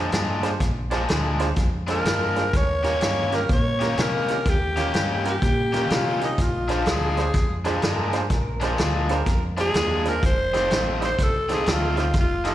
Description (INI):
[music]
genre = electric blues shuffle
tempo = 125 BPM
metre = 4/4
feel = swing 64% on 8ths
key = Bb mixolydian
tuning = A4 = 440 Hz
[part]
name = bright upright piano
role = accompaniment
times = 0.0-12.5 s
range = Db4 to Eb5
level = -31 LUFS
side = right 6 dB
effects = plate reverb, slapback echo
[part]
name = overdriven electric guitar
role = riff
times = 0.0-12.5 s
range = F2 to G4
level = -27 LUFS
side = left 4 dB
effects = slapback echo
[part]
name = deep dub fingered electric bass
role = bass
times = 0.0-12.5 s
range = F1 to C3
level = -27 LUFS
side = equal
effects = none
[part]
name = vintage drum kit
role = drums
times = 0.1-12.5 s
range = hi-hat, kick drum, snare drum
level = -25 LUFS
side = equal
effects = none
[part]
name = growling tenor saxophone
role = melody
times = 1.9-12.5 s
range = Eb4 to Db5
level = -25 LUFS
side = equal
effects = plate reverb, slapback echo
[part]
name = electric guitar through a small old amp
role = second line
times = 7.7-9.4 s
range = F4 to Bb4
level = -32 LUFS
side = right 3 dB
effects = plate reverb, slapback echo
[sound]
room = light reverb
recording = live gig heard through the venue's PA, recital hall reverb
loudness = -20 LUFS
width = side -13 dB against mid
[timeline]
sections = 0.0-12.5 A section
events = none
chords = 0.0 Bb7; 2.5 Eb7; 6.4 Bb7; 10.2 F7